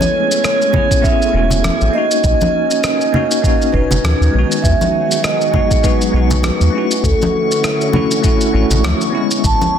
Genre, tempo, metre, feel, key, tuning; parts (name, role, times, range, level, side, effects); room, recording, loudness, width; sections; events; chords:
sunset chillout; 100 BPM; 4/4; swing 57% on 16ths; E major; A4 = 440 Hz
vibraphone with soft mallets; melody; 0.0-9.8 s; A4 to A5; -18 LUFS; right 2 dB; ping-pong delay
bell-like tine electric piano; accompaniment; 0.0-9.8 s; A#2 to G#4; -19 LUFS; left 1 dB; fast stereo tremolo, auto-pan, low-pass filter
soft string machine; sustained chords; 0.0-9.8 s; D3 to G#4; -23 LUFS; equal; ensemble chorus, vintage 12-bit sampler grit
electronic shaker and rim click; drums; 0.0-9.7 s; -22 LUFS; equal; soft clipping on snare
congas; percussion; 0.0-9.7 s; -21 LUFS; left 2 dB
drifting glass-harmonics texture; texture; 0.0-9.8 s; G#5 to C#6; -25 LUFS; right 1 dB; chorus, built-in reverb
electronic kick drum; drums; 0.7-9.6 s; -17 LUFS; equal
round analog bass; bass; 1.3-9.5 s; E1 to E2; -15 LUFS; equal
light reverb; dense, heavily limited modern master; -12 LUFS; side -8 dB against mid
0.0-9.8 A section
kick drops out 4.0-4.6
0.0 Amaj9; 1.9 Bmaj9; 4.6 Emaj9; 7.0 Dmaj9; 9.1 Amaj9